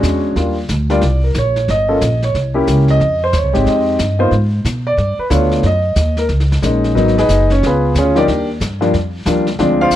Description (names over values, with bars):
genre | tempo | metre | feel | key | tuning
jazz piano trio | 182 BPM | 4/4 | swing 63% on 8ths | Eb major | A4 = 440 Hz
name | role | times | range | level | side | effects
warm grand piano | melody | 0.0-10.0 s | F3 to F5 | -15 LUFS | equal | none
upright bass | bass | 0.0-10.0 s | Gb1 to Cb3 | -16 LUFS | equal | none
vintage brush drum kit | drums | 0.0-10.0 s | brushed snare drum, hi-hat, kick drum, snare drum | -25 LUFS | equal | none
room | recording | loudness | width
little or no reverb | dry, close 1970s-style studio recording | -12 LUFS | side -12 dB against mid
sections
0.4-10.0 A section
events
grand piano solo 0.4-10.0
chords
0.4 Ebmaj9; 1.7 Gdim; 2.3 C7b9; 3.0 Fm7; 4.3 Abm; 5.0 G9; 5.6 Gb69; 7.0 Abm7; 7.6 Db7; 8.3 Ebmaj9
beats
0.04 | 0.37 0.70 1.03 1.36 | 1.69 2.02 2.35 2.67 | 3.00 3.33 3.66 3.99 | 4.32 4.65 4.98 5.31 | 5.64 5.97 6.30 6.63 | 6.96 7.29 7.62 7.95 | 8.28 8.60 8.93 9.26 | 9.59 9.92